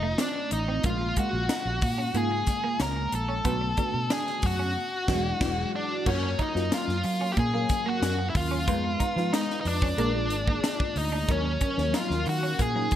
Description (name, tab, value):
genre	polished 1980s jazz-funk pop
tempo	92 BPM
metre	4/4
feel	straight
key	F# major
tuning	A4 = 440 Hz
part	octave-fuzz lead guitar	melody	0.0-13.0 s	C#4 to A#4	-29 LUFS	equal	distortion
part	FM electric piano with soft pad layer	accompaniment	0.0-13.0 s	C#3 to E#5	-32 LUFS	left 2 dB	phaser, analog chorus
part	electric guitar at the edge of break-up	riff	0.0-12.8 s	G#3 to F#4	-36 LUFS	right 5 dB	analog chorus
part	fingered electric bass	bass	0.0-12.9 s	E1 to F#3	-30 LUFS	equal	none
part	crisp fusion drum kit	drums	0.2-13.0 s	crash cymbal, hi-hat, kick drum, snare drum	-30 LUFS	equal	gated reverb
room	light reverb, small room ambience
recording	bright 1980s-style digital production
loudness	-24 LUFS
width	side -11 dB against mid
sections	0.0-6.1 A section; 6.1-13.0 B section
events	band accent 4.8-6.1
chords	0.0 F7b13; 0.8 A#m7; 3.5 Bm7; 4.8 E9; 6.1 F#maj7; 8.7 Fm7b5; 10.0 A#7; 11.3 D#m7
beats	0.19 | 0.84 1.49 2.15 2.80 | 3.45 4.11 4.76 5.41 | 6.07 6.72 7.37 8.02 | 8.68 9.33 9.98 10.63 | 11.29 11.94 12.59